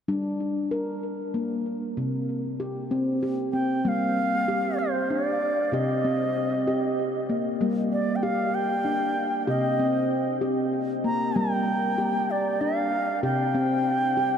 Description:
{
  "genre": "world meditative, meditative tuned percussion",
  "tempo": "64 BPM (dotted quarters)",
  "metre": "6/8",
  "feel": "straight",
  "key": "G minor",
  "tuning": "A4 = 441 Hz",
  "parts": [
    { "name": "handpan", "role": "arpeggios", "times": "0.1-14.4 s", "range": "C3 to Bb4", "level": "-26 LUFS", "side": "left 1 dB", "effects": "ping-pong delay" },
    { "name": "bright reedy bansuri", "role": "melody", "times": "3.5-14.4 s", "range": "C5 to Bb5", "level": "-26 LUFS", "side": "right 2 dB", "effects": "ping-pong delay" }
  ],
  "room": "wet huge ambient reverb, RT60 8.8 s",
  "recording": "in a vast, echoing space",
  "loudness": "-23 LUFS",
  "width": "side -8 dB against mid",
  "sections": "0.1-3.8 A section; 3.8-14.4 B section",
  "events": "none",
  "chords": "0.1 Gm; 2.0 C5; 3.8 Gm; 5.7 Cm; 7.6 Gm; 9.5 Cm; 11.4 Gm; 13.2 C5"
}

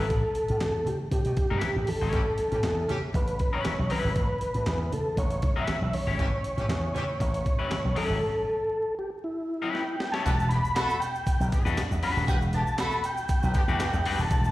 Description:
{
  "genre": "funk",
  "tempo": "118 BPM",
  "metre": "4/4",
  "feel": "straight",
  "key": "unclear",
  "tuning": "A4 = 439 Hz",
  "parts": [
    { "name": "mellow tonewheel organ", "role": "melody", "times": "0.0-14.5 s", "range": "E4 to B5", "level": "-30 LUFS", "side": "equal", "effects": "chorus vibrato, slapback echo" },
    { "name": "electric guitar at the edge of break-up", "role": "accompaniment", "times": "0.0-14.2 s", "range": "G3 to C#5", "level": "-32 LUFS", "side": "left 5 dB", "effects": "slapback echo" },
    { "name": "slap bass with an envelope filter", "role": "bass", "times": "0.0-14.5 s", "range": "D#1 to B2", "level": "-28 LUFS", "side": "equal", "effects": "none" },
    { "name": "breakbeat sampler-style drum kit", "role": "drums", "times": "0.1-14.4 s", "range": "handclaps, hi-hat, kick drum, snare drum", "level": "-29 LUFS", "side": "equal", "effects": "none" },
    { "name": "congas", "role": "percussion", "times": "0.6-8.1 s", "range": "none", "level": "-35 LUFS", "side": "right 2 dB", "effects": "slapback echo" },
    { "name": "warm horn section", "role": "second line", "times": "2.1-3.0, 6.2-7.0, 10.3-14.0 s", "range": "D3 to B4", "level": "-35 LUFS", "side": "equal", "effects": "slapback echo" },
    { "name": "tube shaker", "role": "percussion", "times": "10.3-14.5 s", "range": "none", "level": "-51 LUFS", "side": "left 4 dB", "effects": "none" }
  ],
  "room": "light reverb",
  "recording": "live gig heard through the venue's PA, recital hall reverb, vinyl crackle",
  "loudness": "-25 LUFS",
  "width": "side -16 dB against mid",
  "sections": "0.0-10.3 A section; 10.3-14.5 B section",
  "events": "drum fill 9.7-10.3",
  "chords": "0.0 A9; 10.3 Em9"
}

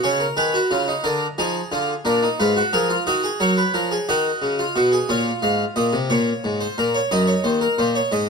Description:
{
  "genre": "classical, baroque-style 3-part fugue for harpsichord",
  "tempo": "59 BPM (dotted quarters)",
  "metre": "12/8",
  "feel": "straight",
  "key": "Eb minor",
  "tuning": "A4 = 441 Hz",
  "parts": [
    { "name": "harpsichord", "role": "solo", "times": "0.0-8.3 s", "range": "Eb2 to F5", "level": "-18 LUFS", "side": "equal", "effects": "none" }
  ],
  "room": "light reverb",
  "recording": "close, detailed microphones",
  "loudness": "-18 LUFS",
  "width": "side -5 dB against mid",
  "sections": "0.0-8.3 A section",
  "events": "none",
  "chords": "0.0 Abm; 1.1 Bb7/D; 3.1 Ebm; 5.1 Bbm; 7.1 Ebm"
}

